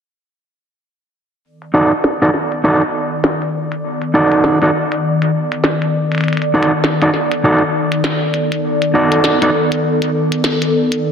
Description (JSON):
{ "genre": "glitch hop", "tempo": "100 BPM", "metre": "4/4", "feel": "swing 60% on 16ths", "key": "unclear", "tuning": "A4 = 440 Hz", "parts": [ { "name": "warbly tape-like pad", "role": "sustained chords", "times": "2.2-11.1 s", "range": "D#3 to F#5", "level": "-17 LUFS", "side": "left 1 dB", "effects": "chorus, built-in reverb, phaser" }, { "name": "glitchy drum kit", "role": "drums", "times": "1.6-11.0 s", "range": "hi-hat, snare drum", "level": "-19 LUFS", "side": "equal", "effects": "low-pass filter on hats, soft clipping on snare, low-pass filter on snare, low-pass filter on room" }, { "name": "electric guitar at the edge of break-up", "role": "stabs", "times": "1.7-9.5 s", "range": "D#4 to D5", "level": "-15 LUFS", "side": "right 1 dB", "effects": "low-pass filter, digital delay" } ], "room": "wet plate reverb, RT60 1.9 s, digital ambience", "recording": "dense, heavily limited modern master", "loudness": "-13 LUFS", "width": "side -7 dB against mid", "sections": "1.4-11.1 A section", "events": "filter sweep on drum 1.4-11.1", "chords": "1.4 B7#9", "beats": "| 1.44 2.04 2.64 3.24 | 3.84 4.44 5.04 5.64 | 6.24 6.84 7.44 8.04 | 8.64 9.24 9.84 10.44 | 11.04" }